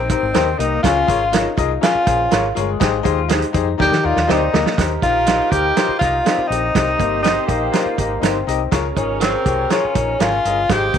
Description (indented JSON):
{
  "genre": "uptempo 1960s-style soul",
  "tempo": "122 BPM",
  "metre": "4/4",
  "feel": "straight",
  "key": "unclear",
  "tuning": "A4 = 440 Hz",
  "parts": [
    { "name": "breathy tenor saxophone", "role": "melody", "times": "0.0-11.0 s", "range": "Bb3 to G4", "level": "-19 LUFS", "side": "left 1 dB", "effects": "tape echo" },
    { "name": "electric guitar through a small old amp", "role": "riff", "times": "0.0-11.0 s", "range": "Ab3 to G4", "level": "-26 LUFS", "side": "left 12 dB", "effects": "tremolo" },
    { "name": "vintage muted fingered electric bass", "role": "bass", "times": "0.0-11.0 s", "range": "G1 to Eb3", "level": "-24 LUFS", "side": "equal", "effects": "none" },
    { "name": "clear upright piano", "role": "accompaniment", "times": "0.1-11.0 s", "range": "Ab2 to Eb5", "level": "-22 LUFS", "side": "left 10 dB", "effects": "none" },
    { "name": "warm soul drum kit", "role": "drums", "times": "0.1-11.0 s", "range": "hi-hat, kick drum, snare drum", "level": "-20 LUFS", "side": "right 5 dB", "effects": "none" },
    { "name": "electric guitar through a small old amp", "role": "stabs", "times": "0.3-10.4 s", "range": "Eb4 to D5", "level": "-28 LUFS", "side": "right 10 dB", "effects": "none" },
    { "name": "warm horn section", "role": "second line", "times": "4.8-11.0 s", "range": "Ab3 to Eb5", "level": "-26 LUFS", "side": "right 11 dB", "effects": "none" }
  ],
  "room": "moderate spring reverb, RT60 1.2 s, small room ambience",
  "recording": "1960s-style stereo with parts hard left and right",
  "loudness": "-15 LUFS",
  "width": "side -8 dB against mid",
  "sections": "0.0-4.8 A section; 4.8-11.0 B section",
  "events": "tenor saxophone solo 0.0-4.8; drum fill 3.8-4.8",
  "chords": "0.0 Cm7; 0.8 Db6; 2.8 Abmaj7; 3.8 Ebmaj7; 4.8 Eb6; 6.7 Cm7; 8.7 Db6"
}